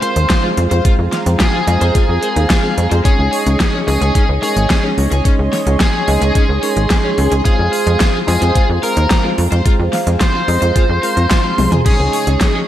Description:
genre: synthwave.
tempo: 109 BPM.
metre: 4/4.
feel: straight.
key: unclear.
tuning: A4 = 440 Hz.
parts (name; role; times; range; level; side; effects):
smooth overdriven lead guitar; melody; 0.0-12.6 s; Ab4 to C5; -19 LUFS; equal; tape echo.
chorused pulse-width pad; sustained chords; 0.0-12.7 s; Ab4 to Db6; -24 LUFS; right 2 dB; sidechain pumping.
overdriven electric guitar; riff; 0.0-12.6 s; Db4 to F5; -26 LUFS; left 2 dB; lush chorus, slapback echo, tape echo.
bell-like tine electric piano; stabs; 0.0-12.4 s; Ab3 to Eb5; -22 LUFS; equal; fast stereo tremolo, slapback echo.
pop drum kit; drums; 0.0-12.5 s; crash cymbal, hi-hat, snare drum, toms; -20 LUFS; equal; small room ambience.
tight sequencer bass; bass; 0.2-12.4 s; Ab1 to F2; -14 LUFS; equal; none.
electronic kick drum; drums; 0.3-12.5 s; none; -14 LUFS; equal; small room ambience.
room: moderate recital hall reverb, RT60 1.7 s.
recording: big arena sound.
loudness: -12 LUFS.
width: side -12 dB against mid.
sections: 0.0-12.7 A section.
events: drum fill 11.6.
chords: 0.0 Fm; 3.1 Dbsus2; 7.5 Fm; 11.9 Dbsus2.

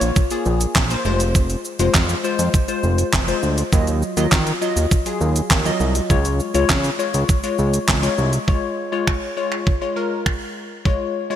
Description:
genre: dance-pop.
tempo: 101 BPM.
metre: 4/4.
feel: straight.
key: Db major.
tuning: A4 = 440 Hz.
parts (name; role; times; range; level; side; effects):
glassy wavetable pluck; accompaniment; 0.0-11.4 s; Gb3 to Eb5; -22 LUFS; left 3 dB; chorus, sidechain pumping.
fat analog bass; bass; 0.0-8.4 s; F1 to Eb3; -20 LUFS; right 1 dB; sidechain pumping.
gated 80s digital drum machine; drums; 0.0-11.0 s; finger snaps, handclaps, hi-hat, kick drum, shaker, snare drum; -19 LUFS; right 1 dB; gated reverb, gated reverb snare, overdrive.
room: light reverb, digital ambience.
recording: bright 1980s-style digital production.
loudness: -17 LUFS.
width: side -10 dB against mid.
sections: 0.0-8.5 A section; 8.5-11.4 B section.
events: none.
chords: 0.0 Bbm; 1.1 Fm; 3.7 Ebmadd9; 6.1 Db.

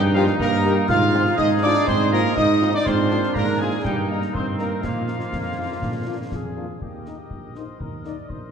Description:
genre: military-style march for wind band.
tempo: 122 BPM.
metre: 2/4.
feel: straight.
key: Eb major.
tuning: A4 = 441 Hz.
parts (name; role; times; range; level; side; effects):
clear woodwind section; second line; 0.0-8.5 s; Bb3 to Eb5; -30 LUFS; left 1 dB; none.
wooden piccolo; second line; 0.0-6.5 s; F5 to F6; -28 LUFS; left 5 dB; none.
bright trombone section; sustained chords; 0.0-6.5 s; Ab3 to Eb4; -31 LUFS; right 1 dB; none.
dark tuba; bass; 0.0-8.5 s; Bb1 to Bb2; -24 LUFS; right 2 dB; none.
mellow euphonium; second line; 0.1-6.6 s; F3 to F4; -25 LUFS; right 4 dB; none.
clear French horn section; accompaniment; 0.1-8.1 s; Bb3 to G4; -31 LUFS; left 6 dB; none.
dark trumpet section; melody; 0.2-8.5 s; F4 to F5; -28 LUFS; left 2 dB; none.
concert snare drum, concert bass drum and clash cymbals; drums; 0.3-8.5 s; none; -31 LUFS; left 1 dB; none.
room: wet concert hall reverb, RT60 2.3 s.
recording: dark, warm production.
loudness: -18 LUFS.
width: side -7 dB against mid.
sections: 0.0-6.8 A section; 6.8-8.5 B section.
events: none.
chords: 0.0 Eb/G; 0.9 Fm7/Ab; 2.9 Bb7/Ab; 3.8 Eb/G; 4.8 Bbsus4; 5.8 Bb; 6.8 Eb.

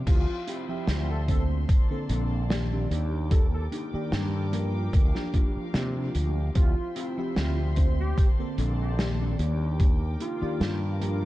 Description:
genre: vaporwave.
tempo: 74 BPM.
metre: 4/4.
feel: swing 54% on 16ths.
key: D phrygian.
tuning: A4 = 439 Hz.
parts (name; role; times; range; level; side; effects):
FM electric piano with soft pad layer; accompaniment; 0.0-11.3 s; D3 to E5; -34 LUFS; equal; analog chorus, analog delay.
dark studio string section; sustained chords; 0.0-11.3 s; F3 to D6; -43 LUFS; left 2 dB; vintage 12-bit sampler grit.
warm velvety synth lead; melody; 0.1-11.0 s; F4 to A4; -38 LUFS; left 1 dB; chorus, tape echo.
fretless electric bass; bass; 0.1-11.3 s; Bb1 to C3; -27 LUFS; equal; tube saturation.
electronic kick drum; drums; 0.1-10.0 s; none; -22 LUFS; equal; none.
loose indie drum kit; drums; 0.1-11.2 s; crash cymbal, hi-hat, snare drum; -34 LUFS; equal; none.
semi-hollow electric guitar; riff; 0.3-11.3 s; Bb3 to A4; -36 LUFS; right 1 dB; ensemble chorus, analog delay.
room: light reverb, small room ambience.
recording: echo-heavy mix, cassette tape.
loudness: -24 LUFS.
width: side -16 dB against mid.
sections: 0.1-11.3 A section.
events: none.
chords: 0.1 Dm11; 1.7 Bbmaj9; 2.9 Ebmaj7; 4.5 Gm7; 6.6 Dm11; 8.2 Bbmaj9; 9.4 Ebmaj7.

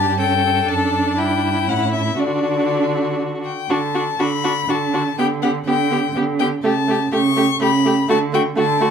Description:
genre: quick classical-period movement for string quartet.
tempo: 122 BPM.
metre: 3/4.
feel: straight.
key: D major.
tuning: A4 = 438 Hz.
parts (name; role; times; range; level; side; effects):
clear violin; melody; 0.0-8.9 s; D5 to C#6; -21 LUFS; left 8 dB; none.
rich violin; second line; 0.0-8.9 s; E4 to A4; -24 LUFS; left 2 dB; none.
rich viola; accompaniment; 0.0-8.9 s; A3 to D4; -23 LUFS; right 4 dB; none.
warm cello; bass; 0.0-8.9 s; F#2 to D3; -21 LUFS; right 5 dB; none.
room: moderate large studio reverb, RT60 0.8 s.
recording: minimal, uncompressed stereo recording.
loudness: -16 LUFS.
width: side -7 dB against mid.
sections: 0.0-3.7 A section; 3.7-8.9 B section.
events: none.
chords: 0.2 A7/G; 0.7 D/F#; 1.2 Em7/G; 1.7 A; 2.2 D; 5.2 G/D; 6.6 A7/C#; 8.1 D.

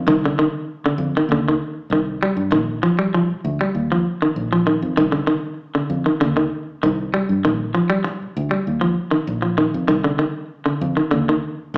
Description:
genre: afrobeat.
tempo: 98 BPM.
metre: 4/4.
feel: straight.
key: C minor.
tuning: A4 = 436 Hz.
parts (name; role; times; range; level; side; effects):
fingered electric bass; bass; 0.0-11.8 s; Bb1 to G2; -27 LUFS; equal; none.
semi-hollow electric guitar; arpeggios; 0.1-11.5 s; D3 to G3; -21 LUFS; equal; none.
room: wet large studio reverb, RT60 1.0 s.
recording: band playing live in one room, small speaker sound.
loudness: -20 LUFS.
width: mono.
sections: 0.0-11.8 A section.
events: none.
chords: 0.1 Cmadd9; 2.5 Bbsus4; 5.0 Cmadd9; 7.4 Bbsus4; 9.9 Cmadd9.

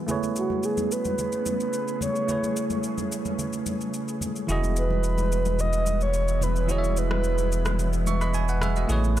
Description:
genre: amapiano.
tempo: 109 BPM.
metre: 4/4.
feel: straight.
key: E major.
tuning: A4 = 444 Hz.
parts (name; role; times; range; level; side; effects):
bell-like tine electric piano; accompaniment; 0.0-9.2 s; E3 to C#6; -30 LUFS; right 4 dB; medium stereo tremolo, low-pass filter.
string machine, violas; sustained chords; 0.0-9.2 s; C#3 to G#4; -34 LUFS; equal; phaser, ensemble chorus, low-pass filter.
electronic shaker and rim click; drums; 0.1-9.2 s; none; -35 LUFS; left 1 dB; dub echo.
congas; percussion; 0.1-9.2 s; none; -33 LUFS; left 4 dB; dub echo.
breathy flute-like synth lead; melody; 0.4-9.2 s; F#4 to D#5; -30 LUFS; right 2 dB; chorus, tremolo, low-pass filter, dub echo.
warm sub bass; bass; 4.5-9.2 s; E1 to A1; -25 LUFS; equal; none.
room: little or no reverb.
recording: echo-heavy mix.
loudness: -23 LUFS.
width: side -12 dB against mid.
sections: 0.0-9.2 A section.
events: filter sweep 0.0-9.2.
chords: 0.1 Amaj9; 4.5 Emaj7.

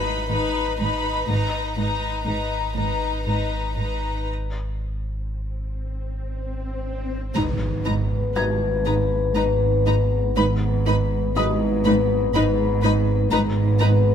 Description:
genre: cinematic, suspense film score.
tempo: 60 BPM.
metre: 3/4.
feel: straight.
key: G# minor.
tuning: A4 = 440 Hz.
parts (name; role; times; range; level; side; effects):
warm symphonic violin section; melody; 0.0-13.9 s; A#5 to B5; -30 LUFS; left 3 dB; none.
warm studio violin section; second line; 0.0-13.9 s; D#4 to B4; -29 LUFS; left 3 dB; none.
dark chamber cello section; riff; 0.0-14.1 s; G#2 to G#3; -27 LUFS; right 2 dB; none.
sub bass with octave; drone; 0.0-14.1 s; G#1; -29 LUFS; equal; none.
felt-muted upright piano; texture; 0.0-14.1 s; D#5 to D#7; -34 LUFS; left 2 dB; none.
dark symphonic double bass section; bass; 0.3-14.1 s; G#1; -26 LUFS; right 2 dB; none.
warm studio cello section; bass; 0.3-14.1 s; G#2; -26 LUFS; right 3 dB; none.
swell and impact; sound effects; 5.9-10.4 s; none; -32 LUFS; left 1 dB; none.
mellow French horn section; sustained chords; 7.3-14.1 s; B3 to B4; -24 LUFS; left 7 dB; none.
dark symphonic viola section; accompaniment; 7.4-13.9 s; D#4; -29 LUFS; left 2 dB; none.
room: light reverb.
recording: close, detailed microphones.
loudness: -20 LUFS.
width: side -8 dB against mid.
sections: 0.0-7.4 A section; 7.4-14.1 A section.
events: break 4.3-7.4; swell 5.9-7.4; impact 7.4-10.4.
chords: 0.0 G#madd9; 4.3 N.C.; 7.4 G#m.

